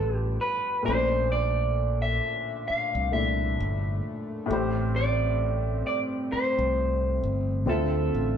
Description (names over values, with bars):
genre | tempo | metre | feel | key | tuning
R&B | 66 BPM | 4/4 | swing 56% on 16ths | unclear | A4 = 439 Hz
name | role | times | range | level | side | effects
electric guitar through a small old amp | melody | 0.0-8.4 s | A4 to F5 | -28 LUFS | right 1 dB | none
warm upright piano | accompaniment | 0.0-8.4 s | A2 to E5 | -32 LUFS | left 3 dB | none
chorused pulse-width pad | sustained chords | 0.0-8.4 s | Bb2 to E5 | -35 LUFS | right 1 dB | none
modern bright fingered electric bass | bass | 0.0-8.4 s | G1 to D2 | -28 LUFS | equal | none
room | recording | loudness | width
wet stone room reverb, RT60 1.3 s | band playing live in one room | -24 LUFS | side -8 dB against mid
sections
0.0-8.4 A section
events
none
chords
0.0 G9; 0.9 Bbmaj9; 4.5 Am7; 7.7 Dm9